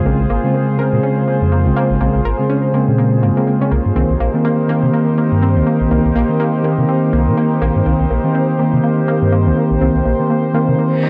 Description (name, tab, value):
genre	deep house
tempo	123 BPM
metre	4/4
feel	swing 58% on 16ths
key	unclear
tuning	A4 = 441 Hz
part	warbly tape-like pad	sustained chords	0.0-11.1 s	Eb4 to C5	-23 LUFS	equal	chorus, built-in reverb
part	mellow tine electric piano	stabs	0.0-11.1 s	Db3 to C4	-18 LUFS	equal	analog delay
part	warbly dusty pluck	arpeggios	0.1-11.1 s	Bb3 to Bb4	-24 LUFS	equal	chorus, analog delay
part	sub bass with octave	bass	0.1-10.7 s	Ab1 to C3	-19 LUFS	equal	tube saturation
part	reverse cymbal	sound effects	10.9-11.1 s	none	-30 LUFS	equal	none
room	light reverb, digital ambience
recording	dry, gritty hardware recording, transformer saturation, cassette tape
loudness	-15 LUFS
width	mono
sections	0.0-11.1 A section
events	reverse cymbal 10.9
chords	0.0 Bbm9; 3.7 Cm7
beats	| 0.06 0.55 1.03 1.52 | 2.01 2.50 2.98 3.47 | 3.96 4.45 4.93 5.42 | 5.91 6.40 6.89 7.37 | 7.86 8.35 8.84 9.32 | 9.81 10.30 10.79